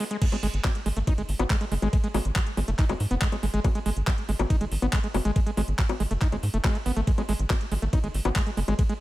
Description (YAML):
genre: psychedelic trance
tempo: 140 BPM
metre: 4/4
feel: straight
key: G# phrygian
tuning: A4 = 442 Hz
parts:
  - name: overdriven acid bass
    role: riff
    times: 0.0-8.9 s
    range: F#3 to D#4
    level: -30 LUFS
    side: equal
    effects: auto-pan, cassette tape, sidechain pumping, analog delay
  - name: garage drum kit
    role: drums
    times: 0.0-9.0 s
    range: bongos, crash cymbal, handclaps, hi-hat, ride cymbal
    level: -32 LUFS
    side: left 3 dB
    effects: none
  - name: electronic kick drum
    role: drums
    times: 0.2-8.9 s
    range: none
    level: -24 LUFS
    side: equal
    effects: none
  - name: tight sequencer bass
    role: bass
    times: 0.4-8.7 s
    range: F#1 to G#2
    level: -27 LUFS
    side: equal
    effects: none
room: digital ambience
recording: none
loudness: -23 LUFS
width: side -16 dB against mid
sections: 0.2-9.0 A section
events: break 0.0; drop 0.2-9.0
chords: 0.2 G#5